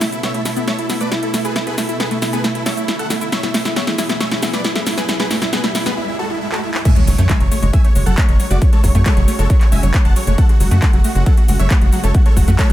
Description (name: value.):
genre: uplifting trance.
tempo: 136 BPM.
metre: 4/4.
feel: straight.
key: unclear.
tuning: A4 = 440 Hz.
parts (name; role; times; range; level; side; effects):
big supersaw lead; melody; 0.0-12.7 s; E4 to A5; -23 LUFS; equal; sidechain pumping, digital delay.
lush unison pad; sustained chords; 0.0-12.7 s; B2 to A4; -26 LUFS; right 1 dB; chorus, sidechain pumping.
analog pluck; arpeggios; 0.0-12.7 s; F#3 to A4; -25 LUFS; left 1 dB; chorus, sidechain pumping, dub echo.
big-room dance drum kit; drums; 0.0-12.7 s; crash cymbal, handclaps, hi-hat, shaker, snare drum; -22 LUFS; equal; none.
riser and impact; sound effects; 2.6-8.6 s; none; -27 LUFS; equal; none.
electronic kick drum; drums; 6.9-12.7 s; none; -12 LUFS; equal; none.
tight sequencer bass; bass; 7.1-12.7 s; F#1 to F#2; -15 LUFS; equal; tube saturation, sidechain pumping.
room: light reverb, digital ambience.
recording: none.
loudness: -13 LUFS.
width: side -14 dB against mid.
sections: 0.0-6.9 A section; 6.9-12.7 B section.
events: build-up 0.0-6.9; drum fill 0.0-6.0, 6.5-6.9; filter sweep on synth arpeggio sound 0.0-6.9; riser 2.6-6.9; break 6.0-6.9; drop 6.9-12.7; impact 6.9-8.6.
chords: 0.0 Esus4; 6.9 F#madd9.